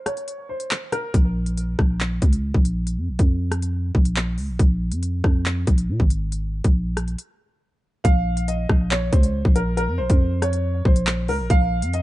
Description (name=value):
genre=hip hop, drill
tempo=139 BPM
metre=4/4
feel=half-time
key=Bb minor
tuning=A4 = 443 Hz
part: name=dark grand piano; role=melody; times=0.0-1.1, 8.0-12.0 s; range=Bb4 to F5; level=-27 LUFS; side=equal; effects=low-pass filter, tape echo
part: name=drill drum kit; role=drums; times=0.1-12.0 s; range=handclaps, hi-hat, kick drum, rim click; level=-19 LUFS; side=equal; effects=none
part: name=growling 808-style bass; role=bass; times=1.1-12.0 s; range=Ab1 to Bb2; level=-22 LUFS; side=equal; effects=none
room=little or no reverb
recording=dark, warm production, nothing above 10.6 kHz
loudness=-19 LUFS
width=side -16 dB against mid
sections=0.0-8.0 A section; 8.0-12.0 B section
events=break 0.0-1.1, 7.2-8.0; filter sweep on grand piano 0.0-1.1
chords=0.0 N.C.; 1.1 Bbm; 4.6 Bb5; 8.0 Bbsus2